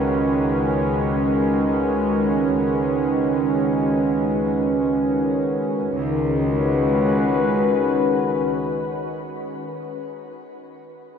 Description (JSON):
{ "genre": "ambient", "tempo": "free time", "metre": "none", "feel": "none", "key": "unclear", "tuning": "A4 = 440 Hz", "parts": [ { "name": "warm analog pad", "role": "sustained chords", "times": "0.0-10.1 s", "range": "D#3 to B4", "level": "-20 LUFS", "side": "equal", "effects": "chorus, shimmer reverb" }, { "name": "warm studio cello section", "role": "bass", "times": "0.0-8.5 s", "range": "C#2", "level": "-26 LUFS", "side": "right 1 dB", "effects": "none" } ], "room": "wet huge ambient reverb, RT60 8.5 s", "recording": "none", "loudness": "-18 LUFS", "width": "side -7 dB against mid", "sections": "0.0-5.9 A section; 5.9-9.4 B section", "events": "none", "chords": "0.0 C#sus2" }